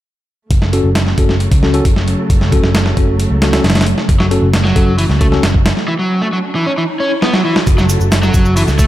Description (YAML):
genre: breakbeat, breaks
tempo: 134 BPM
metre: 4/4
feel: straight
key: F# minor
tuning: A4 = 441 Hz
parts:
  - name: dark studio string section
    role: sustained chords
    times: 0.5-8.9 s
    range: C#3 to A3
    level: -22 LUFS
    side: right 1 dB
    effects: sidechain pumping
  - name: vintage muted picked electric bass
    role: bass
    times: 0.5-8.9 s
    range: F#1 to C#2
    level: -15 LUFS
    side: equal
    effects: low-pass filter
  - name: dusty soul sampler-style drum kit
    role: drums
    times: 0.5-8.9 s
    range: hi-hat, kick drum, snare drum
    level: -14 LUFS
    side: equal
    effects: none
  - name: bell-like tine electric piano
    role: stabs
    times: 0.7-5.4 s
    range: C#4 to A4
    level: -19 LUFS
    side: left 2 dB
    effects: medium stereo tremolo, vintage 12-bit sampler grit, low-pass filter, ping-pong delay
  - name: riser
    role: sound effects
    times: 5.6-7.7 s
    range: none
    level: -24 LUFS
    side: left 1 dB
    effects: none
  - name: overdriven electric guitar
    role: riff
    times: 4.2-8.8 s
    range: E3 to C#4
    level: -16 LUFS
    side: equal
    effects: spring reverb, ping-pong delay
  - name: shaker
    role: drums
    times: 7.7-8.9 s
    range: none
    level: -27 LUFS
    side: right 4 dB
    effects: low-pass filter on perc, low-pass filter on room
room: light reverb, digital ambience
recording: none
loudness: -11 LUFS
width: side -14 dB against mid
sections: 0.5-7.7 A section; 7.7-8.9 B section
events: filter sweep on picked electric bass 0.5-7.7; filter sweep on tine electric piano 0.5-7.7; riser 5.6-7.7; break 5.9-7.7; drum fill 7.2-7.7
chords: 0.5 F#m